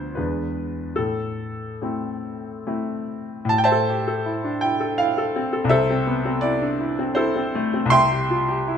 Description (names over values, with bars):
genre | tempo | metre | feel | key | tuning
classical, romantic character piece for solo piano | 69-84 BPM | 3/4 | rubato | A minor | A4 = 440 Hz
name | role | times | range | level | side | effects
bright grand piano | solo | 0.0-8.8 s | C2 to C6 | -20 LUFS | equal | none
room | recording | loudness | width
moderate recital hall reverb, RT60 1.4 s | close, detailed microphones | -20 LUFS | side -8 dB against mid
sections
0.0-3.5 A section; 3.5-8.8 B section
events
none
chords
0.2 E7; 1.0 Am; 5.7 Am/C; 7.9 C